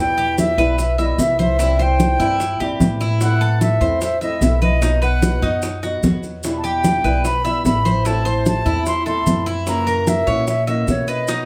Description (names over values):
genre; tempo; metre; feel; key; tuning
latin, Cuban son and guajira; 149 BPM; 4/4; straight; E harmonic minor; A4 = 441 Hz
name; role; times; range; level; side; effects
reedy concert flute; melody; 0.0-11.5 s; C#5 to C6; -23 LUFS; equal; plate reverb
flamenco guitar; accompaniment; 0.0-11.5 s; B2 to F#4; -27 LUFS; equal; none
upright bass; bass; 0.0-11.5 s; A1 to B2; -23 LUFS; equal; none
Cuban tres; arpeggios; 0.2-11.5 s; D#4 to E5; -27 LUFS; equal; none
congas; percussion; 0.2-11.5 s; none; -26 LUFS; equal; none
maracas; percussion; 0.2-11.5 s; none; -36 LUFS; equal; none
bongos; percussion; 0.4-11.5 s; none; -27 LUFS; equal; none
room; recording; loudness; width
wet small room reverb, RT60 0.6 s; heard from further back in the room; -18 LUFS; mono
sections
0.0-11.5 A section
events
none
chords
0.0 Em; 1.6 C; 3.2 Am; 4.8 B; 6.4 Em; 8.1 Am; 9.7 F#7